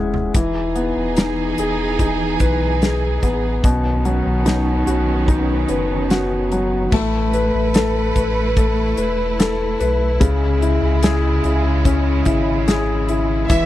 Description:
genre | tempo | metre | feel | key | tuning
pop ballad | 73 BPM | 4/4 | straight | unclear | A4 = 441 Hz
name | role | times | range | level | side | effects
felt-muted upright piano | accompaniment | 0.0-13.7 s | B2 to G#5 | -20 LUFS | left 3 dB | none
saturated sub bass | bass | 0.0-13.7 s | E1 to C#2 | -21 LUFS | equal | none
modern studio drum kit | drums | 0.1-13.7 s | crash cymbal, hi-hat, kick drum, snare drum, toms | -18 LUFS | equal | none
clear studio string section | sustained chords | 0.3-13.7 s | C#3 to B4 | -24 LUFS | right 6 dB | none
warm symphonic violin section | second line | 13.5-13.7 s | E5 | -20 LUFS | right 3 dB | none
tambourine | percussion | 13.5-13.7 s | none | -33 LUFS | right 26 dB | none
room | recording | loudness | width
little or no reverb | dry, close 1970s-style studio recording, lossy compression artefacts | -16 LUFS | side -14 dB against mid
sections
0.0-6.9 A section; 6.9-13.7 B section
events
drum fill 0.0-0.3; felt piano fill 0.0-0.3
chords
0.3 Emaj7; 3.6 Badd9; 6.9 Asus2; 10.2 C#m

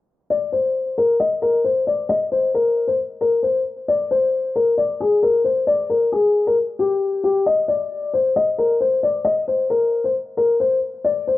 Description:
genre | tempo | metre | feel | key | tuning
hip hop | 134 BPM | 4/4 | half-time | C minor | A4 = 440 Hz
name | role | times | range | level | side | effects
felt-muted upright piano | melody | 0.3-11.4 s | G4 to Eb5 | -17 LUFS | left 3 dB | cassette tape
room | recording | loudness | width
light reverb, small room ambience | home recording on cassette, low-pass filter | -17 LUFS | side -15 dB against mid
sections
0.3-11.4 A section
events
filter sweep 0.3-11.4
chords
none

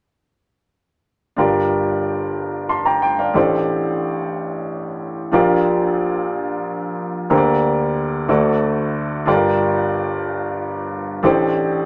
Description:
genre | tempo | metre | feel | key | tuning
gospel | 61 BPM (dotted quarters) | 6/8 | straight | G minor | A4 = 445 Hz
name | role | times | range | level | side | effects
warm upright piano | solo | 1.4-11.9 s | G1 to C6 | -19 LUFS | equal | none
room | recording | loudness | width
moderate club reverb, RT60 0.5 s | none | -19 LUFS | mono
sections
1.4-9.3 A section; 9.3-11.9 B section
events
none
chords
1.4 Gm7; 3.4 D7sus4/A; 5.3 Gm7/Bb; 7.3 Gm/D; 8.3 D; 9.3 Gm7; 11.2 D7sus4/A

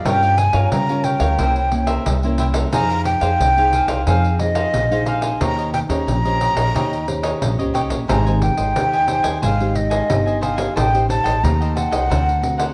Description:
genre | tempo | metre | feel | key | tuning
samba and choro | 90 BPM | 4/4 | straight | Eb major | A4 = 440 Hz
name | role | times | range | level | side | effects
breathy jazz flute | melody | 0.0-12.7 s | Eb5 to Bb5 | -23 LUFS | equal | tape echo
cavaquinho | accompaniment | 0.0-12.7 s | D4 to Ab5 | -29 LUFS | equal | none
nylon-string guitar | accompaniment | 0.0-12.7 s | Bb2 to C5 | -28 LUFS | equal | none
upright bass | bass | 0.0-12.7 s | G1 to Db3 | -23 LUFS | equal | none
pandeiro | percussion | 0.1-12.7 s | none | -27 LUFS | equal | none
room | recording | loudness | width
moderate large studio reverb, RT60 1.1 s | worn, warbling old tape, cassette tape, warbly pitch drift | -18 LUFS | mono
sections
0.0-12.7 A section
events
none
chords
0.1 Gm7b5; 1.4 C7b9; 2.7 Fm7; 5.4 Eb6; 8.1 Abmaj7; 10.8 Am7b5; 12.1 Daug7

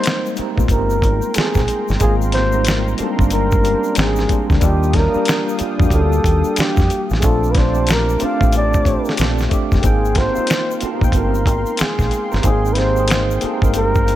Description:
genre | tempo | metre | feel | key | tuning
R&B, neo-soul | 92 BPM | 4/4 | swing 62% on 16ths | Ab lydian | A4 = 439 Hz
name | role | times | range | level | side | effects
breathy flugelhorn | melody | 0.0-14.2 s | G4 to F5 | -21 LUFS | equal | none
electric guitar through a small old amp | second line | 0.0-14.0 s | G3 to Bb4 | -27 LUFS | right 9 dB | tremolo
tine electric piano | accompaniment | 0.0-14.2 s | G3 to G5 | -22 LUFS | left 1 dB | medium stereo tremolo
warm analog pad | sustained chords | 0.0-14.2 s | Ab3 to Eb6 | -30 LUFS | equal | chorus
dusty soul sampler-style drum kit | drums | 0.0-14.2 s | hi-hat, kick drum, snare drum | -18 LUFS | equal | none
finger snaps and egg shaker | percussion | 0.1-14.2 s | none | -32 LUFS | left 8 dB | none
deep dub fingered electric bass | bass | 0.4-14.2 s | F1 to F2 | -19 LUFS | equal | none
room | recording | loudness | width
digital ambience | none | -14 LUFS | side -13 dB against mid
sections
0.0-14.2 A section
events
none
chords
0.0 Abmaj9; 4.6 Ebmaj9; 7.2 Bbmaj9; 9.8 Abmaj9

